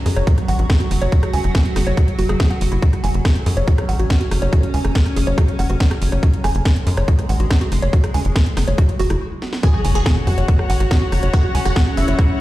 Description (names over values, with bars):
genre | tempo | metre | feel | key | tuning
psychedelic trance | 141 BPM | 4/4 | straight | unclear | A4 = 440 Hz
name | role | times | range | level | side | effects
evolving wavetable pad | sustained chords | 0.0-12.4 s | F#3 to F#4 | -27 LUFS | right 1 dB | chorus, built-in reverb, phaser, sidechain pumping
woody wave-folded pluck | riff | 0.1-12.2 s | E4 to G#5 | -26 LUFS | equal | chorus, auto-pan, sidechain pumping, ping-pong delay
tight sequencer bass | bass | 0.1-12.1 s | F#1 to F#2 | -18 LUFS | equal | none
drum and bass drum kit | drums | 0.1-12.3 s | hi-hat, rim click, snare drum | -26 LUFS | right 1 dB | overdrive
vowel-sweep wobble bass | second line | 0.3-11.5 s | A3 to C#4 | -38 LUFS | right 4 dB | none
electronic kick drum | drums | 0.3-12.3 s | none | -15 LUFS | equal | overdrive
supersaw stab | melody | 9.6-12.4 s | E4 to G#4 | -26 LUFS | equal | phaser, sidechain pumping, dub echo
impact | sound effects | 9.6-11.3 s | none | -24 LUFS | equal | none
rich chamber string section | texture | 9.6-12.4 s | F#4 to F#5 | -28 LUFS | left 4 dB | sidechain pumping
room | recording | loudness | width
little or no reverb | played on a big sound system in a bare room, large studio reverb | -15 LUFS | side -16 dB against mid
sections
0.0-9.6 A section; 9.6-12.4 B section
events
stop 9.2-9.6; drum fill 9.4; drop 9.6-12.4; impact 9.6-11.3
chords
0.0 F#5